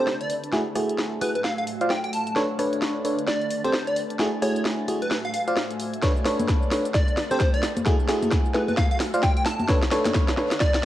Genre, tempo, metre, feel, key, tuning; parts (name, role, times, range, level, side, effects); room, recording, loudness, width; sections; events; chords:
UK garage, two-step garage; 131 BPM; 4/4; swing 61% on 16ths; B minor; A4 = 440 Hz
plucky unison lead; melody; 0.0-10.8 s; B4 to A5; -28 LUFS; equal; analog delay
airy breathy pad; sustained chords; 0.0-10.8 s; A3; -36 LUFS; right 2 dB; chorus, sidechain pumping
FM electric piano; stabs; 0.0-10.5 s; A3 to F5; -26 LUFS; equal; chorus, low-pass filter, analog delay
granular cloud pad; texture; 0.0-10.8 s; A3 to A5; -34 LUFS; equal; built-in reverb, sidechain pumping
garage drum kit; drums; 0.1-10.8 s; cabasa, congas, hi-hat, rim click, snare drum; -28 LUFS; equal; cassette tape
electronic kick drum; drums; 6.0-10.7 s; -22 LUFS; equal; overdrive, cassette tape
light reverb, digital ambience; home recording on cassette; -21 LUFS; side -13 dB against mid
0.0-10.8 A section
build-up 0.0-10.8; drum fill 0.0-10.8; filter sweep on analog synth pad 0.0-10.8
0.3 F#m9; 1.4 Dm7; 2.4 Bm9; 3.3 Am7; 4.0 F#m9; 5.1 Dm7; 6.0 Bm9; 6.9 Am7; 7.6 F#m9; 8.8 Dm7; 9.7 Bm9